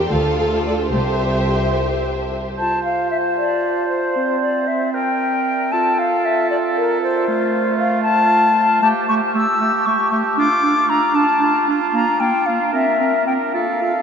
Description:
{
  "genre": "quick classical-period movement for symphony orchestra",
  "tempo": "76 BPM (dotted quarters)",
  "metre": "6/8",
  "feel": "straight",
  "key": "F major",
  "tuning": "A4 = 439 Hz",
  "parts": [
    { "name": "rich studio violin section", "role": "melody", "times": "0.0-2.3 s", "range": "D5 to G5", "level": "-30 LUFS", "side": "right 1 dB", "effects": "none" },
    { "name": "rich studio violin section", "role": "second line", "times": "0.0-2.4 s", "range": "F4 to C5", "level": "-25 LUFS", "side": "left 1 dB", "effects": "none" },
    { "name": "rich studio viola section", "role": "accompaniment", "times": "0.0-2.2 s", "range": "G4 to C5", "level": "-24 LUFS", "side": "right 1 dB", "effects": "none" },
    { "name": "rich studio cello section", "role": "bass", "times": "0.0-2.4 s", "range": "C2 to D2", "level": "-24 LUFS", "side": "equal", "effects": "none" },
    { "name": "rich studio double bass section", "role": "bass", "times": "0.1-1.5 s", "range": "C2 to D2", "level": "-25 LUFS", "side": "equal", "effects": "none" },
    { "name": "silver concert flute", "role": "second line", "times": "2.6-14.0 s", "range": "Bb4 to E6", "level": "-17 LUFS", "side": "left 2 dB", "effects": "none" },
    { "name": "warm clarinet", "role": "second line", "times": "2.6-13.9 s", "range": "A3 to F4", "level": "-22 LUFS", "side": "right 4 dB", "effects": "none" },
    { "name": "warm oboe", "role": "second line", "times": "2.6-14.0 s", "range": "F4 to C5", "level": "-23 LUFS", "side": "right 3 dB", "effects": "none" }
  ],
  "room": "wet huge ambient reverb, RT60 7.2 s",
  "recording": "in a vast, echoing space, nothing above 7.8 kHz",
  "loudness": "-15 LUFS",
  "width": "side -7 dB against mid",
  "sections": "0.0-2.6 A section; 2.6-14.0 A section",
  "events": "none",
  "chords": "0.1 Dm; 0.9 C; 2.6 F5; 4.2 C5; 5.7 F; 7.3 F/A; 8.8 A5; 10.4 Dm; 11.9 Bb5; 12.7 C7"
}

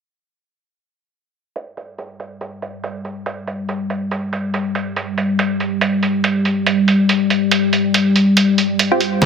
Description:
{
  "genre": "deep dubstep",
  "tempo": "141 BPM",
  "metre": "4/4",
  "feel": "swing 58% on 16ths, half-time",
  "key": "unclear",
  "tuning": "A4 = 441 Hz",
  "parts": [
    { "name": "deep dark ambient pad", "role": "sustained chords", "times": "2.9-9.3 s", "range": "G3", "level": "-17 LUFS", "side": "left 2 dB", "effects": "chorus, built-in reverb" },
    { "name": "trip hop sampler-style drum kit", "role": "drums", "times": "1.6-9.3 s", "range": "hi-hat, snare drum", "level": "-20 LUFS", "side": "right 3 dB", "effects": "overdrive, low-pass filter on hats, low-pass filter on snare" },
    { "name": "filtered dub chord stab", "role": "stabs", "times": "8.9-9.0 s", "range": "C4 to G4", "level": "-16 LUFS", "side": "right 2 dB", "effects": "phaser" }
  ],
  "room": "light reverb",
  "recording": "none",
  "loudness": "-15 LUFS",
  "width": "side -6 dB against mid",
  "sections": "1.6-9.3 A section",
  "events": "filter sweep on drum 1.6-9.3",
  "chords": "none"
}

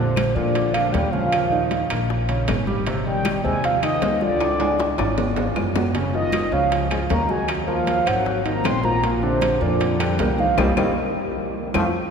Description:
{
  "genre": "Afro-Cuban jazz",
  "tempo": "156 BPM",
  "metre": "4/4",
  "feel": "straight",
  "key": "Bb major",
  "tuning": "A4 = 440 Hz",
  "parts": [
    { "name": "mellow horn-like synth lead", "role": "melody", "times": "0.0-11.9 s", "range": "C5 to C6", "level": "-24 LUFS", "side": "right 1 dB", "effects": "chorus" },
    { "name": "warm trombone", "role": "second line", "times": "0.0-11.8 s", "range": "C3 to C4", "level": "-28 LUFS", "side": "left 4 dB", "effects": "none" },
    { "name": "warm grand piano", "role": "accompaniment", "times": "0.0-11.9 s", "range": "Bb2 to D5", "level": "-25 LUFS", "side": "right 2 dB", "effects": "none" },
    { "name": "upright bass", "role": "bass", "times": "0.0-11.9 s", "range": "Gb1 to Bb2", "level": "-26 LUFS", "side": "equal", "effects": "none" },
    { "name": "bongos", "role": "percussion", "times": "0.2-11.8 s", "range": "none", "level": "-32 LUFS", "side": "left 5 dB", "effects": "none" },
    { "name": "claves", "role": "percussion", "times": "0.2-11.8 s", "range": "none", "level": "-36 LUFS", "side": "left 7 dB", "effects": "none" },
    { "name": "congas", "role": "percussion", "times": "0.2-11.8 s", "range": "none", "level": "-31 LUFS", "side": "left 1 dB", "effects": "none" },
    { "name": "timbales", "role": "percussion", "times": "0.2-11.8 s", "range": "none", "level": "-29 LUFS", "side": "right 4 dB", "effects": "none" }
  ],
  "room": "wet cathedral reverb, RT60 4.8 s",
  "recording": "recorded in a church or concert hall",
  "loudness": "-18 LUFS",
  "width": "side -6 dB against mid",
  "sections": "0.0-12.1 A section",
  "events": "drum fill 4.4-5.9, 11.4-12.1; band accent 10.6-12.1",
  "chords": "0.0 Bbadd9; 1.3 Eb9; 2.9 Abmaj7; 4.4 Db; 5.9 Gb5; 7.5 Ebm; 8.3 Abadd9; 9.0 Bb69; 10.6 Cm7; 11.4 F"
}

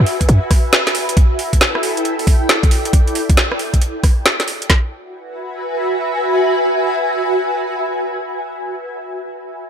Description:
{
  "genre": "UK garage, two-step garage",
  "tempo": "136 BPM",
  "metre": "4/4",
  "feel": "swing 64% on 16ths",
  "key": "F# minor",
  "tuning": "A4 = 439 Hz",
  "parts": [
    { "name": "granular cloud pad", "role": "texture", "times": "0.0-9.0 s", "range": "E4 to G#5", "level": "-19 LUFS", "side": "equal", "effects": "built-in reverb, ensemble chorus, sidechain pumping" },
    { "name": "garage drum kit", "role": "drums", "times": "0.1-4.7 s", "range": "hi-hat, rim click, snare drum", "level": "-16 LUFS", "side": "equal", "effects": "overdrive" },
    { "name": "garage drum kit", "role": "drums", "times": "0.2-4.8 s", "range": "kick drum, snare drum", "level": "-12 LUFS", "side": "equal", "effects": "overdrive" }
  ],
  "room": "moderate plate reverb, RT60 1.8 s",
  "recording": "dreamy mix soaked in reverb",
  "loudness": "-14 LUFS",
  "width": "side -8 dB against mid",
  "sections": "0.0-4.7 A section; 4.7-8.2 B section",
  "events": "none",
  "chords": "0.0 F#7(no3); 0.9 A5; 4.7 F#9sus4"
}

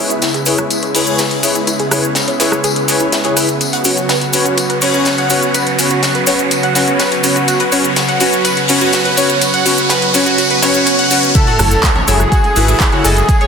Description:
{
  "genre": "progressive house",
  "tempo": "124 BPM",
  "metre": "4/4",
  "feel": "straight",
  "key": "unclear",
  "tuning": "A4 = 440 Hz",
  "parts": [
    { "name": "lush unison pad", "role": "sustained chords", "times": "0.0-13.5 s", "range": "C#3 to F#4", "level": "-20 LUFS", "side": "right 1 dB", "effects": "chorus, sidechain pumping" },
    { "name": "soft supersaw", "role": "stabs", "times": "0.0-13.2 s", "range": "C#4 to E5", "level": "-17 LUFS", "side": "left 1 dB", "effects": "cassette tape, sidechain pumping, low-pass filter, tape echo" },
    { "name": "riser and sub drop", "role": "sound effects", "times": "0.4-13.3 s", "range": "none", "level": "-20 LUFS", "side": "right 1 dB", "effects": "none" },
    { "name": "analog pluck", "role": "arpeggios", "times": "0.1-13.5 s", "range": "E4 to C#6", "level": "-19 LUFS", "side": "equal", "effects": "chorus, sidechain pumping, tape echo" },
    { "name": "deep house drum kit", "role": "drums", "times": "0.1-13.5 s", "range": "crash cymbal, handclaps, hi-hat, rim click", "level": "-18 LUFS", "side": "left 1 dB", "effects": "overdrive, sidechain pumping on hats, sidechain pumping on cymbals" },
    { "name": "cabasa", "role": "percussion", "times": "0.1-13.4 s", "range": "none", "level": "-22 LUFS", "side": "equal", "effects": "none" },
    { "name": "tight funk drum kit", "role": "drums", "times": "0.2-13.4 s", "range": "hi-hat, snare drum, tambourine", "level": "-21 LUFS", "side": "left 3 dB", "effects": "sidechain pumping on hats, high-pass filter on hats, high-pass filter on snare, sidechain pumping on perc, high-pass filter on perc, high-pass filter on room" },
    { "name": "wide unison lead", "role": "melody", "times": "11.4-13.5 s", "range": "G#4 to A4", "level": "-17 LUFS", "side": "equal", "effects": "cassette tape, sidechain pumping, tape echo" },
    { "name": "airy dreamy lead", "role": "second line", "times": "11.4-13.5 s", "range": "G#5 to A5", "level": "-23 LUFS", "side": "equal", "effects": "none" },
    { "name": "electronic kick drum", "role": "drums", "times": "11.4-13.4 s", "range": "none", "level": "-13 LUFS", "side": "equal", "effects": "overdrive" },
    { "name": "round analog bass", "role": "bass", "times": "11.6-13.2 s", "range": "F#1 to G#1", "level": "-14 LUFS", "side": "equal", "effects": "sidechain pumping" },
    { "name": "bongos and congas", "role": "percussion", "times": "11.6-13.0 s", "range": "none", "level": "-26 LUFS", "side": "left 3 dB", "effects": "sidechain pumping on perc" }
  ],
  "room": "wet lush hall reverb, RT60 2.0 s, small room ambience",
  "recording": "dense, heavily limited modern master",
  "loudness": "-10 LUFS",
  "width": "side -6 dB against mid",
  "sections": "0.0-11.4 A section; 11.4-13.5 B section",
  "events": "build-up 0.0-11.4; filter sweep on synth pluck 0.0-11.4; filter sweep on supersaw synth 0.0-11.4; riser 0.4-11.4; drop 11.4-13.5; impact 11.4-13.3",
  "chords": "0.0 E6; 3.6 Bsus2; 11.4 F#m7"
}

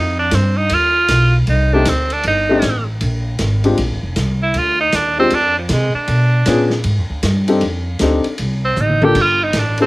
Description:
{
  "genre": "jazz, big band swing",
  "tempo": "156 BPM",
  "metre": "4/4",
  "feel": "swing 64% on 8ths",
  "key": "F mixolydian",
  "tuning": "A4 = 438 Hz",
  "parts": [
    { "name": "clear tenor saxophone", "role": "melody", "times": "0.0-9.9 s", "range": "F3 to G4", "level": "-16 LUFS", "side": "right 2 dB", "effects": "none" },
    { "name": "upright bass", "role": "bass", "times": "0.0-9.9 s", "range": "F1 to C3", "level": "-17 LUFS", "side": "equal", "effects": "none" },
    { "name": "vintage drum kit", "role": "drums", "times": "0.3-9.8 s", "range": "crash cymbal, hi-hat, kick drum, ride cymbal, snare drum, toms", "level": "-24 LUFS", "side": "equal", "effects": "none" },
    { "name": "warm upright piano", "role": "accompaniment", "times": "1.7-9.9 s", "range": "Ab3 to A4", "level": "-16 LUFS", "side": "left 2 dB", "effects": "none" }
  ],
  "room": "little or no reverb",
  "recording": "none",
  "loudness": "-13 LUFS",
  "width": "side -20 dB against mid",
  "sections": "0.0-9.9 A section",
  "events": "tenor saxophone solo 0.0-9.9; drum fill 8.8-9.2",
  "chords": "0.0 F13; 3.0 Bb9; 6.1 Bdim7; 7.6 F13; 9.2 G7(no3)"
}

